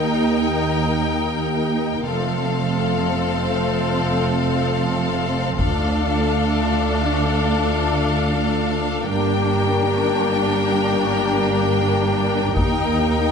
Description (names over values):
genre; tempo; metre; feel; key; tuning
cinematic, epic orchestral film score; free time; none; none; D phrygian; A4 = 442 Hz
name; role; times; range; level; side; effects
clear symphonic violin section; melody; 0.0-13.3 s; F5 to G5; -26 LUFS; left 4 dB; none
warm symphonic violin section; second line; 0.0-13.3 s; A4 to Bb4; -26 LUFS; left 5 dB; none
warm symphonic viola section; accompaniment; 0.0-13.3 s; C4 to Eb4; -25 LUFS; left 1 dB; none
mellow French horn section; sustained chords; 0.0-13.3 s; A3 to G4; -25 LUFS; left 3 dB; none
rich symphonic cello section; bass; 0.0-13.3 s; D2 to G2; -25 LUFS; right 4 dB; none
warm symphonic double bass section; bass; 0.0-13.3 s; F1 to Eb2; -24 LUFS; right 3 dB; none
solo taiko drums; drums; 5.6-7.3, 12.6-13.3 s; none; -24 LUFS; left 1 dB; none
room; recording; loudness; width
moderate concert hall reverb, RT60 2.2 s; none; -18 LUFS; side -6 dB against mid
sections
0.0-13.3 A section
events
build-up 0.0-13.3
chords
0.0 Eb; 2.1 F; 5.6 Dm; 9.1 Gm; 12.6 Eb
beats
free time